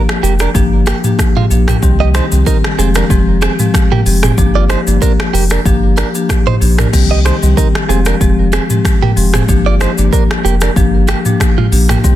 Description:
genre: afrobeats.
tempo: 94 BPM.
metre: 4/4.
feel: swing 55% on 16ths.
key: unclear.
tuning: A4 = 440 Hz.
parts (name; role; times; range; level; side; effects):
afro-pop drum kit; drums; 0.1-12.2 s; crash cymbal, finger snaps, hi-hat, kick drum, rim click, shaker, toms; -13 LUFS; equal; soft clipping on snare.
direct-recorded clean electric guitar; riff; 0.2-12.0 s; Ab3 to Eb5; -20 LUFS; right 9 dB; tape echo.
warm sub bass; bass; 0.2-12.2 s; F1 to C2; -13 LUFS; equal; none.
marimba with medium mallets; accompaniment; 0.5-12.2 s; Eb3 to G4; -16 LUFS; left 4 dB; none.
room: light reverb, digital ambience.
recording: dense, heavily limited modern master.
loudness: -9 LUFS.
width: side -13 dB against mid.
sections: 0.0-6.9 A section; 6.9-12.2 B section.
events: none.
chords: 0.0 Gm7; 1.8 Cm; 2.8 Fmadd9; 4.4 Gm7; 6.9 Cm; 7.9 Fmadd9; 9.5 Gm7.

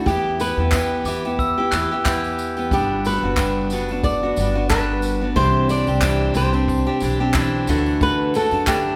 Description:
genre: acoustic pop.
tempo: 91 BPM.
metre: 4/4.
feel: swing 55% on 16ths.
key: G major.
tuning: A4 = 440 Hz.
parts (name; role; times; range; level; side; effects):
flamenco guitar; melody; 0.0-9.0 s; G4 to D5; -25 LUFS; equal; none.
picked steel-string acoustic guitar; accompaniment; 0.0-9.0 s; C3 to G4; -24 LUFS; equal; none.
upright bass; bass; 0.0-9.0 s; F#1 to F#2; -27 LUFS; equal; none.
jazz brush drum kit; drums; 0.1-8.8 s; handclaps, kick drum, tambourine; -27 LUFS; equal; none.
tambourine; percussion; 0.1-8.8 s; none; -43 LUFS; equal; none.
glockenspiel with soft plastic mallets; second line; 1.1-2.5 s; D6 to G6; -29 LUFS; equal; none.
room: moderate scoring stage reverb, RT60 2.0 s.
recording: recorded in a church or concert hall.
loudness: -20 LUFS.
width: mono.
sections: 0.0-9.0 A section.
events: none.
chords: 0.1 Em; 2.7 Gmaj7; 5.4 Cadd9; 7.7 Dadd9.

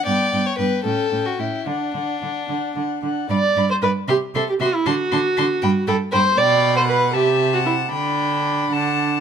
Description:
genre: quick classical-period movement for string quartet.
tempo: 72-80 BPM (dotted quarters).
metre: 6/8.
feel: rubato.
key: D major, G major from 3.3 s.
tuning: A4 = 439 Hz.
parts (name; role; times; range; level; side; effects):
dark violin; melody; 0.0-9.2 s; F#5 to C6; -25 LUFS; left 8 dB; none.
rich violin; second line; 0.0-9.2 s; D4 to A5; -26 LUFS; left 4 dB; none.
dark viola; accompaniment; 0.0-9.2 s; B3 to D5; -21 LUFS; right 2 dB; none.
rich cello; bass; 0.1-9.2 s; G2 to D3; -24 LUFS; right 5 dB; none.
room: light reverb.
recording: close, detailed microphones.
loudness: -17 LUFS.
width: side -7 dB against mid.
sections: 0.0-3.3 A section; 3.3-9.2 B section.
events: none.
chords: 0.1 G; 0.9 A7; 1.7 D; 3.3 G; 4.1 C6; 4.9 D7; 5.6 G; 6.4 G/B; 7.1 Am7/C; 7.9 G/D.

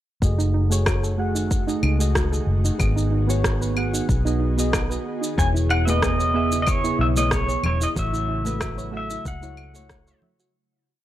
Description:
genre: sunset chillout.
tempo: 93 BPM.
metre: 4/4.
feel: straight.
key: F# dorian.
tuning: A4 = 435 Hz.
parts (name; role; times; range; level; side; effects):
soft electric-piano-like synth keys; accompaniment; 0.2-10.5 s; A3 to F#5; -28 LUFS; right 2 dB; chorus, auto-pan, low-pass filter, analog delay.
ethereal airy pad; sustained chords; 1.1-10.5 s; C#3 to G#4; -33 LUFS; right 1 dB; ensemble chorus, built-in reverb.
vintage muted fingered electric bass; bass; 0.2-10.1 s; E1 to C#2; -23 LUFS; equal; none.
electronic kick drum; drums; 0.2-10.0 s; none; -25 LUFS; equal; overdrive.
electronic shaker, rim click and claves; drums; 0.2-10.5 s; none; -28 LUFS; equal; none.
soft round pluck; arpeggios; 0.4-10.5 s; D#4 to E5; -31 LUFS; right 2 dB; chorus, analog delay.
pedal steel guitar; melody; 5.4-10.2 s; C#5 to G#5; -25 LUFS; equal; none.
congas; percussion; 5.9-10.4 s; none; -33 LUFS; left 2 dB; none.
room: little or no reverb.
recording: dry, gritty hardware recording, transformer saturation.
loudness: -19 LUFS.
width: side -13 dB against mid.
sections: 0.2-10.5 groove.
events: fade-out 7.1-10.5.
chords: 0.2 F#m69; 2.8 G#m7; 5.4 E6; 8.0 A6.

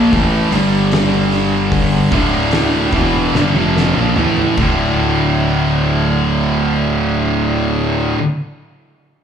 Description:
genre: stoner and doom metal.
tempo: 72 BPM.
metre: 4/4.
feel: straight.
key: D minor.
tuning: A4 = 439 Hz.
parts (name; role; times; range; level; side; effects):
distorted electric guitar; riff; 0.0-8.2 s; D2 to Bb3; -18 LUFS; right 1 dB; overdrive, slapback echo.
fuzz guitar; riff; 0.0-8.2 s; D2 to Bb3; -19 LUFS; right 8 dB; distortion, slapback echo.
thick fuzz guitar; riff; 0.0-8.2 s; D2 to Bb3; -19 LUFS; left 8 dB; distortion, slapback echo.
fuzz picked electric bass; bass; 0.0-8.1 s; D1 to Bb1; -20 LUFS; equal; overdrive.
oversized low-tuned drum kit; drums; 0.1-4.8 s; crash cymbal, hi-hat, kick drum, snare drum, toms; -21 LUFS; equal; none.
room: small room reverb.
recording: live gig heard through the venue's PA, club reverb.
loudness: -13 LUFS.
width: side -8 dB against mid.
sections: 0.0-5.0 A section; 5.0-8.4 B section.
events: slowing down 0.0-5.0; drum fill 3.3-5.0.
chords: 0.0 Dm (rootless); 0.5 G5; 2.1 Dm; 4.6 D5.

